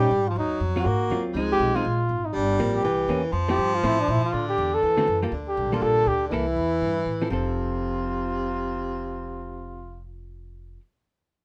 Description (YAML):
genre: jazz, small-group swing and bop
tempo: 242 BPM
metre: 4/4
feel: swing 59% on 8ths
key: F major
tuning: A4 = 440 Hz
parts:
  - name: mellow flugelhorn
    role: melody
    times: 0.0-10.1 s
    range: D4 to A4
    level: -28 LUFS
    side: equal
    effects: none
  - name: mellow baritone saxophone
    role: second line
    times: 0.0-10.1 s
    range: C3 to Bb3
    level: -30 LUFS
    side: equal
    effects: none
  - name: hollow-body jazz guitar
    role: accompaniment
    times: 0.0-10.8 s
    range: D3 to A4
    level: -32 LUFS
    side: equal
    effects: none
  - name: upright bass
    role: bass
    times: 0.0-10.8 s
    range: F1 to Bb2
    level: -32 LUFS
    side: equal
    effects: none
room: moderate studio reverb, RT60 0.5 s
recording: none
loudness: -24 LUFS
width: mono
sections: 0.0-5.3 A section; 5.3-7.3 B section; 7.3-9.3 C section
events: none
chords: 0.4 Ebmadd9; 0.9 Ab13; 1.4 Dbmaj9; 2.3 Gm11; 2.8 C7b9; 3.3 Fmaj7; 4.8 D7; 5.3 Gm9; 6.3 C6; 7.3 F